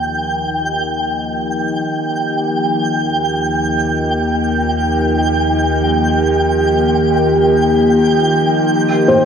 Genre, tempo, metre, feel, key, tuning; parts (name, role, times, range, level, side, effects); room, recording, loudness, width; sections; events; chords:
ambient; free time; Eb major; A4 = 444 Hz
evolving wavetable pad; sustained chords; 0.0-9.3 s; F3 to G4; -16 LUFS; equal; chorus, built-in reverb
round analog bass; bass; 0.0-9.3 s; Eb2; -25 LUFS; left 1 dB
analog drone; drone; 0.0-9.3 s; Eb3; -23 LUFS; equal; chorus
twinkling granular texture; texture; 0.0-9.3 s; G5; -18 LUFS; right 1 dB; built-in reverb
felt-muted upright piano; arpeggios; 9.1-9.3 s; C5; -12 LUFS; equal
wet huge ambient reverb, RT60 7.6 s; worn, warbling old tape, cassette tape, warbly pitch drift; -13 LUFS; side -7 dB against mid
0.0-9.3 A section
fade-in on ambient pad 0.0-9.3; fade-in on analog synth bass 0.0-9.3; fade-in on synth drone 0.0-9.3
0.0 Ebadd9; 8.7 Eb